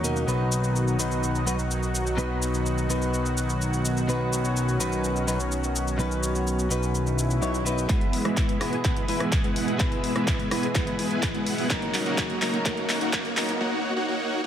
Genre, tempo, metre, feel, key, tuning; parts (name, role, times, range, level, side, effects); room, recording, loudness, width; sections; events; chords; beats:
EDM, festival progressive house; 126 BPM; 4/4; straight; B major; A4 = 443 Hz
direct-recorded clean electric guitar; accompaniment; 0.0-13.6 s; B2 to C#5; -29 LUFS; left 1 dB; wide subtle chorus, sidechain pumping, digital delay
lush unison pad; sustained chords; 0.0-13.6 s; B2 to A#4; -30 LUFS; equal; chorus, sidechain pumping
fat analog bass; bass; 0.0-7.9 s; B1 to D#2; -30 LUFS; equal; sidechain pumping
big-room dance drum kit; drums; 0.0-13.6 s; handclaps, hi-hat, rim click, shaker; -31 LUFS; equal
swell and riser; sound effects; 7.1-13.6 s; -37 LUFS; equal
dense compressed supersaw; riff; 7.9-14.5 s; G#3 to A#5; -27 LUFS; right 1 dB; sidechain pumping, low-pass filter, digital delay
electronic kick drum; drums; 7.9-13.2 s; -26 LUFS; equal
moderate concert hall reverb, RT60 1.9 s, digital ambience; high-pass filter; -23 LUFS; side -10 dB against mid
0.0-7.9 A section; 7.9-14.5 B section
swell 7.1-7.9; build-up 7.9-14.5; drum fill 7.9-13.6; filter sweep on supersaw synth 7.9-14.5; filter sweep 7.9-14.5
0.3 B; 7.9 E; 11.7 D#m7
| 0.27 0.75 1.23 1.70 | 2.18 2.65 3.13 3.61 | 4.08 4.56 5.04 5.51 | 5.99 6.46 6.94 7.42 | 7.89 8.37 8.85 9.32 | 9.80 10.27 10.75 11.23 | 11.70 12.18 12.65 13.13 | 13.61 14.08